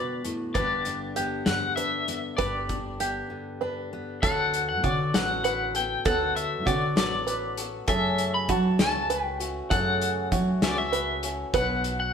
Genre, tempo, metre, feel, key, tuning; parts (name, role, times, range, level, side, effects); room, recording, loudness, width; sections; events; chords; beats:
indie folk with a building arrangement; 66 BPM (dotted quarters); 6/8; straight; D major; A4 = 440 Hz
electric guitar at the edge of break-up; melody; 0.0-12.1 s; D5 to B5; -28 LUFS; left 3 dB; tremolo
fingerpicked steel-string acoustic guitar; accompaniment; 0.0-6.0 s; G2 to G4; -35 LUFS; left 2 dB
open-back banjo; arpeggios; 0.0-12.1 s; F#4 to B4; -30 LUFS; right 4 dB
loose indie drum kit; drums; 0.2-12.0 s; hi-hat, kick drum, snare drum; -29 LUFS; left 1 dB
upright bass; bass; 0.6-12.1 s; G1 to F#3; -32 LUFS; right 1 dB
picked swing-style acoustic guitar; accompaniment; 4.2-12.1 s; F#2 to A4; -33 LUFS; left 3 dB
moderate stone room reverb, RT60 1.1 s; band playing live in one room; -24 LUFS; side -7 dB against mid
0.0-4.2 A section; 4.2-12.1 B section
break 3.3-4.2
0.0 Bm; 0.6 G; 4.2 D6; 7.9 F#m7; 11.5 Bm
| 0.56 1.47 | 2.39 3.31 | 4.22 5.14 | 6.05 6.97 | 7.88 8.80 | 9.71 10.63 | 11.54